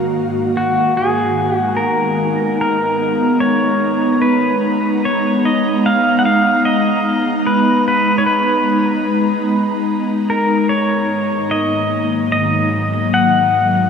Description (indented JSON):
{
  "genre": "ambient",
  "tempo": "74 BPM",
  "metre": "3/4",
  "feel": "straight",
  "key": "G# dorian",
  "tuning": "A4 = 441 Hz",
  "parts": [
    { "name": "ethereal airy pad", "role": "sustained chords", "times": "0.0-13.9 s", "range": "G#2 to A#5", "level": "-16 LUFS", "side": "equal", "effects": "ensemble chorus, built-in reverb, shimmer reverb" },
    { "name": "pedal steel guitar", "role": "melody", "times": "0.6-13.9 s", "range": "F#4 to F#5", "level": "-17 LUFS", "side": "left 1 dB", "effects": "shimmer reverb, ping-pong delay" }
  ],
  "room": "wet cathedral reverb, RT60 5.6 s",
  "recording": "in a vast, echoing space, cassette tape",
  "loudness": "-13 LUFS",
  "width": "side -6 dB against mid",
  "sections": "1.0-13.9 A section",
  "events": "none",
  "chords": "0.0 D#madd9/G#; 1.0 G#m69; 10.7 D#m/G#",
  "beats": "0.17 | 0.98 1.79 2.60 | 3.42 4.23 5.04 | 5.85 6.66 7.47 | 8.28 9.09 9.90 | 10.71 11.52 12.33 | 13.14"
}